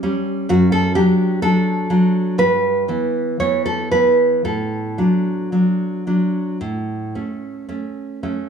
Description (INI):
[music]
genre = romantic piece for solo classical guitar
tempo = 55-64 BPM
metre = 4/4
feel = rubato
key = D major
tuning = A4 = 436 Hz
[part]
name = nylon-string guitar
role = solo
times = 0.0-8.5 s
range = F#2 to C#5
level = -16 LUFS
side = right 1 dB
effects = none
[sound]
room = moderate recital hall reverb, RT60 1.6 s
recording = small room ambience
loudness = -16 LUFS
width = side -7 dB against mid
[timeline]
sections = 0.0-8.5 A section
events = none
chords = 0.5 D/F#; 2.4 Em/G; 4.5 D/A; 6.6 A